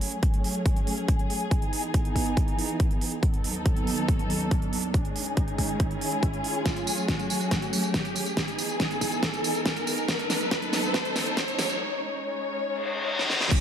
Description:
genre	uplifting trance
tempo	140 BPM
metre	4/4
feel	straight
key	F# dorian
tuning	A4 = 440 Hz
part	dark studio string section	sustained chords	0.0-13.6 s	D#2 to C#5	-30 LUFS	equal	sidechain pumping
part	big-room dance drum kit	drums	0.0-13.6 s	crash cymbal, hi-hat, snare drum, tambourine	-30 LUFS	right 1 dB	none
part	riser, reverse cymbal and impact	sound effects	0.0-13.6 s	none	-32 LUFS	equal	none
part	electronic kick drum	drums	0.2-13.6 s	none	-26 LUFS	equal	none
room	light reverb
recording	dark, warm production, high-pass filter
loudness	-24 LUFS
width	side -9 dB against mid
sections	0.0-13.5 A section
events	build-up 0.0-13.5; riser 0.0-11.8; filter sweep 0.0-13.5; drum fill 6.7-11.8, 13.2-13.5; reverse cymbal 12.8-13.5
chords	0.0 F#madd9; 1.5 Emaj7; 3.2 B7/D#; 4.9 C#sus2; 6.7 F#madd9; 8.4 Emaj7; 10.1 B7/D#; 11.8 C#sus2

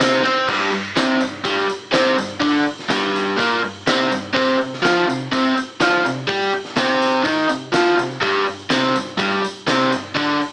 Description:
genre	garage rock duo or trio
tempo	124 BPM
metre	4/4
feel	straight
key	unclear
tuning	A4 = 440 Hz
part	overdriven electric guitar	riff	0.0-10.4 s	G2 to C5	-16 LUFS	equal	none
part	oversized low-tuned drum kit	drums	0.0-10.5 s	crash cymbal, hi-hat, kick drum, ride cymbal, snare drum	-24 LUFS	equal	none
part	tambourine	percussion	0.0-10.5 s	none	-35 LUFS	equal	none
room	moderate club reverb, RT60 0.7 s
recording	small speaker sound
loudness	-16 LUFS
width	side -24 dB against mid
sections	0.5-10.5 A section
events	none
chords	0.5 G5; 4.3 C5; 8.2 G5

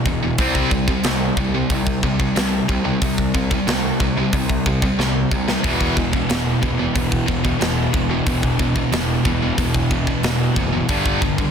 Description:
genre	heavy metal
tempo	91 BPM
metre	4/4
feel	straight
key	E minor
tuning	A4 = 437 Hz
part	high-gain distorted guitar	riff	0.0-11.5 s	E2 to C4	-23 LUFS	left 9 dB	distortion
part	high-gain distorted guitar	riff	0.0-11.5 s	E2 to C4	-23 LUFS	right 12 dB	distortion
part	fuzz picked electric bass	bass	0.1-11.4 s	E1 to C2	-24 LUFS	equal	overdrive
part	tight metal drum kit	drums	0.1-11.5 s	hi-hat, kick drum, snare drum	-22 LUFS	equal	none
part	thick fuzz guitar	riff	5.6-11.5 s	E2 to G3	-25 LUFS	equal	distortion
room	little or no reverb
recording	dense, heavily limited modern master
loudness	-17 LUFS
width	side -7 dB against mid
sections	0.0-11.5 A section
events	drum fill 5.0-5.6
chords	0.4 C5; 5.6 E5; 10.9 G5

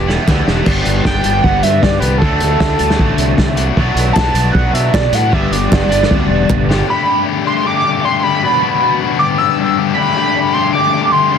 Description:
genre	indie rock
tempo	155 BPM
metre	4/4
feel	straight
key	unclear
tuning	A4 = 441 Hz
part	overdriven synth lead	melody	0.0-11.4 s	G4 to E6	-16 LUFS	right 1 dB	distortion, chorus, phaser, analog delay
part	biting overdriven guitar	riff	0.0-11.4 s	G2 to G4	-17 LUFS	left 8 dB	none
part	overdriven semi-hollow guitar	riff	0.0-6.9 s	F#3 to E4	-21 LUFS	right 8 dB	ensemble chorus, analog delay
part	fuzz fingered electric bass	bass	0.0-6.8 s	E1 to B2	-17 LUFS	right 1 dB	overdrive
part	vintage drum kit	drums	0.1-6.8 s	crash cymbal, hi-hat, kick drum, snare drum, toms	-16 LUFS	equal	none
part	group handclap	percussion	0.3-0.4, 4.2-6.6 s	none	-29 LUFS	right 3 dB	none
room	little or no reverb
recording	dense, heavily limited modern master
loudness	-11 LUFS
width	side -7 dB against mid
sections	0.7-6.9 A section; 6.9-11.4 B section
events	drum fill 0.0-0.7, 6.1-6.9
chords	0.0 Em7; 0.7 G; 2.2 D; 3.8 Bm7; 5.3 G; 6.9 Dsus4; 8.4 Bm; 9.2 G6; 10.0 Dsus4

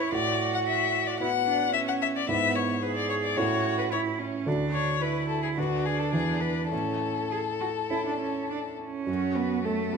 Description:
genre	quick classical-period movement for piano trio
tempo	100-112 BPM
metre	4/4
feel	rubato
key	A major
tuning	A4 = 440 Hz
part	warm violin	melody	0.0-10.0 s	F#4 to F#5	-29 LUFS	left 9 dB	none
part	rich cello	second line	0.0-10.0 s	A3 to G#4	-30 LUFS	right 7 dB	none
part	warm grand piano	accompaniment	0.0-10.0 s	D2 to B4	-30 LUFS	right 2 dB	none
room	wet recital hall reverb, RT60 1.8 s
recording	minimal, uncompressed stereo recording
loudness	-25 LUFS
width	side -5 dB against mid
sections	0.0-9.1 A section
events	none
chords	0.1 B5/A; 2.3 E/G#; 3.4 A; 4.5 D; 5.6 Bm/D; 6.1 E7; 6.7 A; 9.1 F#m

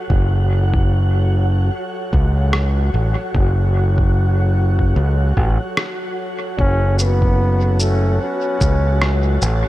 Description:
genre	ambient dub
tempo	74 BPM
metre	4/4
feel	swing 57% on 16ths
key	F# minor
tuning	A4 = 440 Hz
part	airy breathy pad	sustained chords	0.0-9.7 s	F#3 to F#5	-29 LUFS	equal	chorus
part	wind-like tuned noise texture	texture	0.0-9.7 s	F#4 to A5	-28 LUFS	left 1 dB	built-in reverb
part	growling fingered electric bass	bass	0.1-9.6 s	F#1 to C#2	-15 LUFS	equal	overdrive
part	electronic kick drum	drums	0.1-8.8 s	none	-18 LUFS	equal	studio reverb
part	electronic rim click and shaker	drums	2.5-9.6 s	none	-24 LUFS	equal	studio reverb, dub echo
part	warm trombone	melody	6.6-9.4 s	A3 to C#4	-22 LUFS	equal	dub echo
room	little or no reverb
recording	none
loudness	-15 LUFS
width	side -16 dB against mid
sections	0.0-9.7 A section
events	fade-in on analog synth pad 0.0-9.7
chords	0.0 F#m

